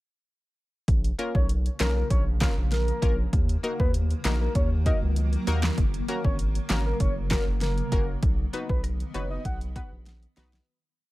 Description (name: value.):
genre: dancehall.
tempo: 98 BPM.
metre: 4/4.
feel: straight.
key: unclear.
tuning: A4 = 444 Hz.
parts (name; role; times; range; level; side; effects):
granular cloud pad; sustained chords; 2.0-10.7 s; Db3 to B3; -36 LUFS; equal; built-in reverb, sidechain pumping.
saturated sub bass; bass; 0.9-10.6 s; Gb1 to Eb2; -26 LUFS; equal; none.
deep house drum kit; drums; 0.9-10.7 s; handclaps, hi-hat, kick drum, rim click, snare drum; -26 LUFS; equal; overdrive.
analog pluck; accompaniment; 1.2-10.5 s; Bb3 to B4; -34 LUFS; left 2 dB; chorus, sidechain pumping.
soft octave-layered synth lead; melody; 1.4-9.9 s; Bb4 to F#5; -34 LUFS; left 1 dB; chorus, tape echo.
room: digital ambience.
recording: none.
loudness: -23 LUFS.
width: side -18 dB against mid.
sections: 0.9-10.7 chorus.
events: fade-out 8.2-10.7; drum fill 10.1-10.7.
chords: 0.9 Bbm; 3.3 Ebm; 5.8 Gb; 8.2 B.